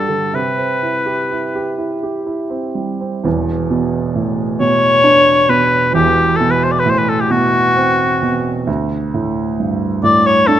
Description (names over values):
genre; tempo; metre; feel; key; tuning
classical, impressionist duo for oboe and grand piano; 40-45 BPM (dotted quarters); 6/8; rubato; E minor; A4 = 440 Hz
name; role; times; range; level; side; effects
warm oboe; melody; 0.0-10.6 s; F#4 to D5; -13 LUFS; left 2 dB; none
warm grand piano; accompaniment; 0.0-10.6 s; E1 to B4; -17 LUFS; right 3 dB; none
room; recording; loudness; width
moderate concert hall reverb, RT60 2.0 s; close, detailed microphones; -13 LUFS; side -11 dB against mid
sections
0.0-3.3 A section; 3.3-10.6 B section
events
none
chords
0.3 Cmaj7; 3.3 E5; 6.0 Cmaj7#11/E; 8.7 Gsus2/D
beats
| 0.35 1.80 | 3.25 4.61 | 5.95 7.31 | 8.67 10.03